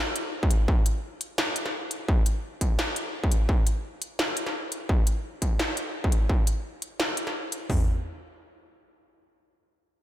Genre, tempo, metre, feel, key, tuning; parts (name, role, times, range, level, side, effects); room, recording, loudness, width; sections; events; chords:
half-time drum and bass; 171 BPM; 4/4; swing 56% on 16ths, half-time
industrial drum kit; drums; 0.2-7.6 s; hi-hat, snare drum; -30 LUFS; equal
industrial drum kit; drums; 0.4-7.8 s; hi-hat, kick drum, toms; -23 LUFS; equal; distortion
light reverb; -24 LUFS; side -13 dB against mid
0.0-7.7 A section; 7.7-10.0 B section